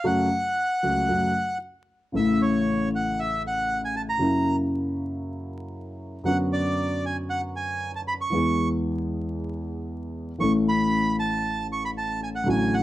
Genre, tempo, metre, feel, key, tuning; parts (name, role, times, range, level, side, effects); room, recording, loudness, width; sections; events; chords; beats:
tango; 116 BPM; 4/4; rubato; A major; A4 = 438 Hz
bandoneon; melody; 0.0-12.8 s; C#5 to C#6; -26 LUFS; right 1 dB
dark concert grand piano; accompaniment; 0.0-12.8 s; A1 to A4; -25 LUFS; left 1 dB
moderate large studio reverb, RT60 0.9 s; dark, warm production, vinyl crackle; -23 LUFS; side -15 dB against mid
0.0-2.1 A section; 2.1-12.8 B section
0.1 F#m; 2.1 A; 4.2 F#7; 6.3 Bm/F#; 8.3 E; 10.4 A
| 0.05 0.57 1.08 1.61 | 2.14 2.65 3.17 3.69 | 4.20 4.71 5.23 5.74 | 6.26 6.77 7.29 7.80 | 8.32 8.84 9.36 9.88 | 10.40 10.93 11.44 11.96 | 12.47